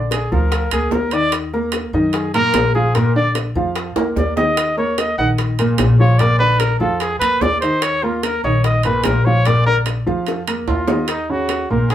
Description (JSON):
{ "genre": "Afro-Cuban jazz", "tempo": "148 BPM", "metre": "4/4", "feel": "straight", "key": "Eb minor", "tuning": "A4 = 442 Hz", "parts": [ { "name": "warm upright piano", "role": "accompaniment", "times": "0.0-11.9 s", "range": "Bb2 to Bb5", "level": "-21 LUFS", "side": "equal", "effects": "none" }, { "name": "upright bass", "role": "bass", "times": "0.0-11.9 s", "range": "Bb1 to Gb2", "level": "-19 LUFS", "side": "left 1 dB", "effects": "none" }, { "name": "breathy trumpet", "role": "melody", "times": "0.1-11.9 s", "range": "Eb4 to Gb5", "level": "-19 LUFS", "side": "equal", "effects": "none" }, { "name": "bongos", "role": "percussion", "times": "0.1-11.9 s", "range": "none", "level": "-27 LUFS", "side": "left 3 dB", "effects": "none" }, { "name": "timbales", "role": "percussion", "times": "0.1-11.9 s", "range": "none", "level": "-24 LUFS", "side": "right 3 dB", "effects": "none" } ], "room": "wet studio ambience, RT60 0.5 s", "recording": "band playing live in one room", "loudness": "-15 LUFS", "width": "side -11 dB against mid", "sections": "0.0-11.1 A section", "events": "trumpet solo 0.0-11.1; drum fill 4.0-4.6, 10.3-11.1", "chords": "0.0 Bb; 1.3 Ebm; 3.0 Bb; 4.6 Eb5; 6.2 Bb; 7.8 Eb5; 9.5 Bb; 11.1 Ebm7" }